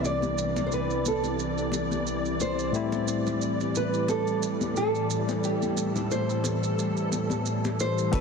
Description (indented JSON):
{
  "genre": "sunset chillout",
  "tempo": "89 BPM",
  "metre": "4/4",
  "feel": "swing 55% on 16ths",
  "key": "unclear",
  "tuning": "A4 = 440 Hz",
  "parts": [
    { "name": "nylon-string guitar", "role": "melody", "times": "0.0-8.2 s", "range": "G4 to D5", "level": "-30 LUFS", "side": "right 2 dB", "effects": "tape echo" },
    { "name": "barky tine electric piano", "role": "accompaniment", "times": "0.0-8.2 s", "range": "A2 to A4", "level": "-33 LUFS", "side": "moving between left 6 dB and right 3 dB", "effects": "auto-pan, digital delay" },
    { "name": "soft string machine", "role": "sustained chords", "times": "0.0-8.2 s", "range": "C2 to F#5", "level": "-28 LUFS", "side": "equal", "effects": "ensemble chorus" },
    { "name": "electronic shaker and hi-hat", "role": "drums", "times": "0.0-8.2 s", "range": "none", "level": "-38 LUFS", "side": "right 8 dB", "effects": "low-pass filter on perc, low-pass filter on hats, low-pass filter on room" },
    { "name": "congas", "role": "percussion", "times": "0.0-7.8 s", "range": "none", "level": "-35 LUFS", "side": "left 4 dB", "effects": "none" },
    { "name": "round analog bass", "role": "bass", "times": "8.1-8.2 s", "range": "G1", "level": "-25 LUFS", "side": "equal", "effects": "none" },
    { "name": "electronic kick drum", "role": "drums", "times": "8.1-8.2 s", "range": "none", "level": "-29 LUFS", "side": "equal", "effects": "none" }
  ],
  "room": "moderate lush hall reverb, RT60 2.0 s",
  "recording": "heavily compressed radio sound",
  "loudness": "-25 LUFS",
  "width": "side -5 dB against mid",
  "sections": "0.0-8.1 A section",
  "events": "filter sweep on tine electric piano 0.0-8.1",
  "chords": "0.0 Cmaj9; 2.7 Am7",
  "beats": "| 0.04 0.71 1.39 2.06 | 2.73 3.41 4.08 4.76 | 5.43 6.11 6.78 7.45 | 8.13"
}